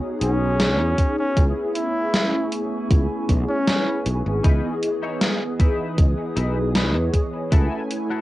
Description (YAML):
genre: vaporwave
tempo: 78 BPM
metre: 4/4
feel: straight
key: C# minor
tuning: A4 = 440 Hz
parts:
  - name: mellow synth brass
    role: accompaniment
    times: 0.0-8.2 s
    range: E3 to G#5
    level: -26 LUFS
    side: equal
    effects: ensemble chorus, cassette tape, tape echo
  - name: warbly tape-like pad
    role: sustained chords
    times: 0.0-8.2 s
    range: A3 to D#6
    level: -35 LUFS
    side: equal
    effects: chorus, built-in reverb
  - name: clear flugelhorn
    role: melody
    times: 0.2-4.1 s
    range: C#4 to E4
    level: -26 LUFS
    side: equal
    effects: cassette tape, tape echo
  - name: sustaining fretless electric bass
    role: bass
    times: 0.2-7.7 s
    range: G#1 to E2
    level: -22 LUFS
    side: equal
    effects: tube saturation
  - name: gated 80s digital drum machine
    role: drums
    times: 0.2-8.1 s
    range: hi-hat, snare drum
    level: -23 LUFS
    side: equal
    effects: gated reverb, gated reverb snare, cassette tape
  - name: electronic kick drum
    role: drums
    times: 1.0-7.7 s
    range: none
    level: -18 LUFS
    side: equal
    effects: overdrive, cassette tape
  - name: semi-hollow electric guitar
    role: riff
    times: 4.4-8.2 s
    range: D#4 to C#5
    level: -32 LUFS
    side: left 6 dB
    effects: analog chorus, vintage 12-bit sampler grit, tape echo
room: light reverb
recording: home recording on cassette, nothing above 10.9 kHz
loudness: -19 LUFS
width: side -16 dB against mid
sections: 0.0-8.2 A section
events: none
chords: 0.0 Emaj7 (rootless); 1.4 Amaj7/C#; 4.4 C#m9; 7.5 F#m7/C#